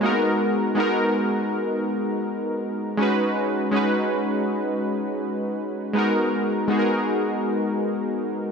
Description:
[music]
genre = R&B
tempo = 81 BPM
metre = 4/4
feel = swing 58% on 16ths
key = G# minor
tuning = A4 = 440 Hz
[part]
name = warm analog keys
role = solo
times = 0.0-8.5 s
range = G#3 to B4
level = -21 LUFS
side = equal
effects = chorus
[sound]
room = moderate lush hall reverb, RT60 2.8 s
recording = nothing above 10.8 kHz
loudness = -21 LUFS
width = side -5 dB against mid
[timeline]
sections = 0.0-8.5 A section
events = none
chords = 0.0 G#m7; 3.0 B6; 6.0 G#m7

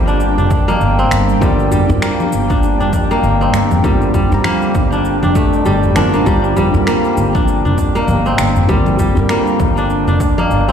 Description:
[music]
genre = organic downtempo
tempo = 99 BPM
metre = 4/4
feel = swing 58% on 16ths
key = G minor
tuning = A4 = 440 Hz
[part]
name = felt-muted upright piano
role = accompaniment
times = 0.0-10.7 s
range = D3 to Bb5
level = -21 LUFS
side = left 2 dB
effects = sidechain pumping, ping-pong delay
[part]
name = ethereal airy pad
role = sustained chords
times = 0.0-10.7 s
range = G3 to G5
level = -21 LUFS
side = right 1 dB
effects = ensemble chorus, built-in reverb, phaser, sidechain pumping
[part]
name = kora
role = arpeggios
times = 0.0-10.7 s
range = G3 to D4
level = -17 LUFS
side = equal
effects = ping-pong delay
[part]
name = upright bass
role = bass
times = 0.0-10.7 s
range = F1 to G2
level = -17 LUFS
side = equal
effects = sidechain pumping
[part]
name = electronic cabasa, congas and finger snaps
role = drums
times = 0.1-10.7 s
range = none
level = -24 LUFS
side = left 3 dB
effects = overdrive
[part]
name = tabla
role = percussion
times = 0.4-10.5 s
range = none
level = -22 LUFS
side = left 1 dB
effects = none
[part]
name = electronic kick drum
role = drums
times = 0.5-10.3 s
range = none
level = -18 LUFS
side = equal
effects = overdrive
[sound]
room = moderate lush hall reverb, RT60 2.4 s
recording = played on a big sound system in a bare room, stone room reverb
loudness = -11 LUFS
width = side -8 dB against mid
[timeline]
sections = 0.0-10.7 A section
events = none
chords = 0.0 Gm

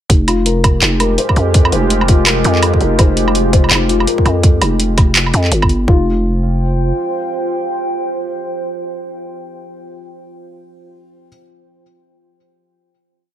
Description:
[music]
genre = half-time drum and bass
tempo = 166 BPM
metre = 4/4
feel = swing 60% on 16ths, half-time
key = F minor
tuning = A4 = 440 Hz
[part]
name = deep dark ambient pad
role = sustained chords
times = 0.8-9.5 s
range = Ab3 to G5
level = -20 LUFS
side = right 1 dB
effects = chorus, built-in reverb, sidechain pumping
[part]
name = growling 808-style bass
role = bass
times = 0.1-6.9 s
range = F1 to F2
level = -15 LUFS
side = equal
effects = none
[part]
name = drum and bass drum kit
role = drums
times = 0.1-5.8 s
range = handclaps, hi-hat, woodblock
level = -16 LUFS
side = right 2 dB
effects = none
[part]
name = electronic kick drum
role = drums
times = 0.1-6.0 s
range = none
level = -11 LUFS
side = equal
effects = none
[part]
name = felt-muted upright piano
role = arpeggios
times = 0.3-6.0 s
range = F4 to C5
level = -22 LUFS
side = left 5 dB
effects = tape echo
[sound]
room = digital ambience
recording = none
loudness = -11 LUFS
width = side -11 dB against mid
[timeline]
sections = 0.1-5.9 drop; 5.9-8.8 final chord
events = drop 0.1-5.9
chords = 0.1 Fmadd9; 5.9 Fsus2

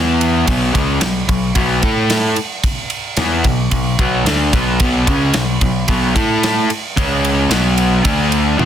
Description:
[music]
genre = hard rock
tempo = 111 BPM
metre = 4/4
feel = straight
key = B minor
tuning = A4 = 440 Hz
[part]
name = crunchy overdriven guitar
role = riff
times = 0.0-8.7 s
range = B2 to A4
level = -16 LUFS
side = equal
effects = none
[part]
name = growling picked electric bass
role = bass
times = 0.0-8.7 s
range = B1 to A2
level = -20 LUFS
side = equal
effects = overdrive
[part]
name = big rock drum kit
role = drums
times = 0.2-8.7 s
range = kick drum, ride cymbal, snare drum, toms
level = -18 LUFS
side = equal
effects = none
[sound]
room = moderate studio reverb, RT60 0.6 s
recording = dense, heavily limited modern master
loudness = -13 LUFS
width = side -10 dB against mid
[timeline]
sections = 0.0-8.7 A section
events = none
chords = 0.5 B5; 1.8 A5; 3.2 Bm; 6.2 A5; 7.0 C#5; 7.5 B5; 8.0 D5

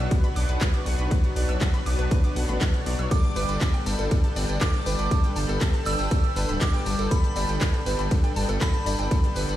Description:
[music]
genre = progressive house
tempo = 120 BPM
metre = 4/4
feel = straight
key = unclear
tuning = A4 = 444 Hz
[part]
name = lush unison pad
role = sustained chords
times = 0.0-9.6 s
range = D4 to G5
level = -35 LUFS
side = equal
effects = chorus, sidechain pumping
[part]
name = analog pluck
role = arpeggios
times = 0.0-9.6 s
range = A4 to E6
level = -35 LUFS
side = right 1 dB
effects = chorus, sidechain pumping, tape echo
[part]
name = soft supersaw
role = stabs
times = 0.0-9.6 s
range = G2 to C#5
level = -32 LUFS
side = left 2 dB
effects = ensemble chorus, sidechain pumping, tape echo
[part]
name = dark detuned saw bass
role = bass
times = 0.0-9.6 s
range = D1 to B1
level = -26 LUFS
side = equal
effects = sidechain pumping
[part]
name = deep house drum kit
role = drums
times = 0.1-9.6 s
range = handclaps, hi-hat, ride cymbal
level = -34 LUFS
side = equal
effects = overdrive, sidechain pumping on hats, sidechain pumping on cymbals
[part]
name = electronic kick drum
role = drums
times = 0.1-9.2 s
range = none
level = -22 LUFS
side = equal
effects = none
[part]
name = glassy synth bell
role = melody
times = 3.1-9.3 s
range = B5 to E6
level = -33 LUFS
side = right 2 dB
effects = chorus, sidechain pumping, tape echo
[part]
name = warm studio violin section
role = second line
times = 3.1-9.3 s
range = B5 to E6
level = -41 LUFS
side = right 2 dB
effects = none
[part]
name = tambourine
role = percussion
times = 3.1-9.6 s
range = none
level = -38 LUFS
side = left 4 dB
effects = none
[sound]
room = light reverb, digital ambience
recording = played on a big sound system in a bare room, large studio reverb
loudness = -22 LUFS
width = side -13 dB against mid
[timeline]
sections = 0.0-9.6 A section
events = none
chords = 0.0 Bm; 3.1 Gadd9

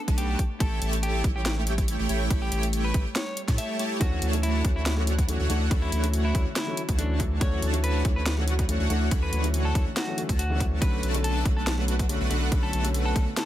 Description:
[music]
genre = future bass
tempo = 141 BPM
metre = 4/4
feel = swing 53% on 16ths, half-time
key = D major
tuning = A4 = 440 Hz
[part]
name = airy breathy pad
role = sustained chords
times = 0.0-13.5 s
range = D3 to C#5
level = -38 LUFS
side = left 1 dB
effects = none
[part]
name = big bright polysynth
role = riff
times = 0.1-13.3 s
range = A3 to B5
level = -32 LUFS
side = right 2 dB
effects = wide subtle chorus, sidechain pumping
[part]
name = saturated sub bass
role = bass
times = 0.1-13.3 s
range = A1 to A2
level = -26 LUFS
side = equal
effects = sidechain pumping
[part]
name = electronic kick drum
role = drums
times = 0.1-13.2 s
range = none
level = -25 LUFS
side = equal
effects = overdrive
[part]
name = trap drum kit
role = drums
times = 0.1-13.5 s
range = hi-hat, snare drum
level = -31 LUFS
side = equal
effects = overdrive
[part]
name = clean electric guitar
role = melody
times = 0.2-13.5 s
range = D4 to E5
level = -35 LUFS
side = left 1 dB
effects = sidechain pumping, digital delay
[part]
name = felt-muted upright piano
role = accompaniment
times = 4.0-13.2 s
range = D3 to D4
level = -34 LUFS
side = left 2 dB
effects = sidechain pumping
[sound]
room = little or no reverb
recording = dense, heavily limited modern master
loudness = -23 LUFS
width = side -13 dB against mid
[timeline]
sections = 0.0-13.5 A section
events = none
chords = 0.4 A7; 4.0 Dmaj7; 10.8 Bm7

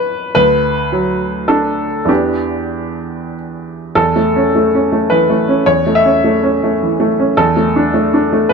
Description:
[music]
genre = neoclassical minimalist piano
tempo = 94-109 BPM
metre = 3/4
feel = rubato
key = unclear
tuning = A4 = 439 Hz
[part]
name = clear upright piano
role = solo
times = 0.0-8.5 s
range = D2 to E5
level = -12 LUFS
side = equal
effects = none
[sound]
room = light reverb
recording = dark, warm production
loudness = -11 LUFS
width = side -5 dB against mid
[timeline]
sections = 0.0-4.0 A section; 4.0-8.5 B section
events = none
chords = 0.4 D; 2.1 Em7; 4.0 A/E; 7.4 Dsus2/E

